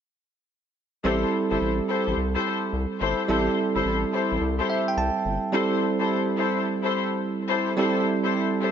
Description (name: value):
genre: R&B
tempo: 107 BPM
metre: 4/4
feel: swing 66% on 16ths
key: A minor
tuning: A4 = 440 Hz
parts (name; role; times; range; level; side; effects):
- bell-like tine electric piano; accompaniment; 1.0-8.7 s; G3 to A5; -25 LUFS; right 4 dB; none
- muted studio string section; stabs; 1.0-8.7 s; E4 to C5; -26 LUFS; left 4 dB; ping-pong delay
- round analog bass; bass; 1.0-5.4 s; G1 to C2; -29 LUFS; left 1 dB; none
room: moderate lush hall reverb, RT60 2.4 s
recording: nothing above 7.6 kHz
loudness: -22 LUFS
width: side -8 dB against mid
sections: 1.0-5.5 A section; 5.5-8.7 B section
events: tine electric piano fill 4.4-5.5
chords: 1.0 Am7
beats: | 1.04 1.60 2.17 2.73 | 3.29 3.85 4.41 4.97 | 5.53 6.09 6.65 7.21 | 7.77 8.33